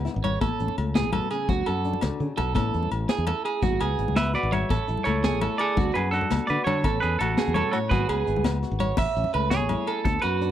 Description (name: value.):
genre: highlife guitar band.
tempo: 112 BPM (dotted quarters).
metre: 12/8.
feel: straight.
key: A major.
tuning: A4 = 440 Hz.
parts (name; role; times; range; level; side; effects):
flamenco guitar; accompaniment; 0.0-10.5 s; G#2 to F#4; -33 LUFS; left 7 dB; none.
modern bright fingered electric bass; bass; 0.0-10.5 s; G#1 to D3; -28 LUFS; equal; none.
vintage brush drum kit; drums; 0.1-10.5 s; crash cymbal, hi-hat, kick drum, snare drum; -28 LUFS; equal; none.
electric guitar at the edge of break-up; arpeggios; 0.2-10.5 s; F#4 to E5; -29 LUFS; right 7 dB; slapback echo.
agogo bells; percussion; 0.2-10.4 s; none; -36 LUFS; left 5 dB; none.
congas; percussion; 0.2-10.1 s; none; -31 LUFS; left 6 dB; none.
semi-hollow electric guitar; melody; 4.2-10.5 s; F#4 to E5; -27 LUFS; right 3 dB; none.
room: light reverb, studio reverb.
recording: none.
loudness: -22 LUFS.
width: side -11 dB against mid.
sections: 0.0-9.0 A section; 9.0-10.5 B section.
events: clean electric guitar solo 9.0-10.5.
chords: 0.4 A; 1.5 D; 2.6 A; 3.6 Eadd9/G#; 4.7 A; 5.8 D; 6.8 A; 7.9 Eadd9/G#; 9.0 A.